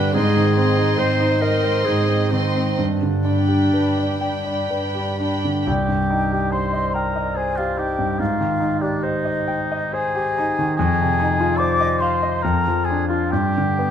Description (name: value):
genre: classical, romantic movement for piano and orchestra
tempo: 60-74 BPM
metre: 3/4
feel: rubato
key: C minor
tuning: A4 = 438 Hz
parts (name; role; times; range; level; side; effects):
- clear concert grand piano; melody; 0.0-13.9 s; C2 to G5; -21 LUFS; equal; none
- warm chamber violin section; melody; 0.0-5.7 s; B5 to C6; -32 LUFS; left 2 dB; none
- bright clarinet; second line; 0.0-4.7 s; C4 to C5; -23 LUFS; left 1 dB; none
- warm chamber violin section; second line; 0.0-5.7 s; Eb5 to G5; -28 LUFS; equal; none
- dark chamber viola section; accompaniment; 0.0-5.7 s; C4 to D4; -29 LUFS; left 1 dB; none
- warm chamber cello section; bass; 0.0-5.6 s; G2 to Ab2; -24 LUFS; right 2 dB; none
- mellow hollow silver concert flute; second line; 5.7-13.9 s; D5 to D6; -24 LUFS; left 3 dB; none
- warm oboe; second line; 5.7-13.9 s; D4 to D5; -26 LUFS; right 1 dB; none
room: moderate scoring stage reverb, RT60 1.4 s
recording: none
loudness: -18 LUFS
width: side -9 dB against mid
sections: 0.0-5.7 A section; 5.7-13.9 A section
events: none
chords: 0.1 Ab; 2.8 G; 5.7 Cm; 8.2 Abmaj7; 10.8 Fm7; 12.4 Fmadd11; 13.3 G5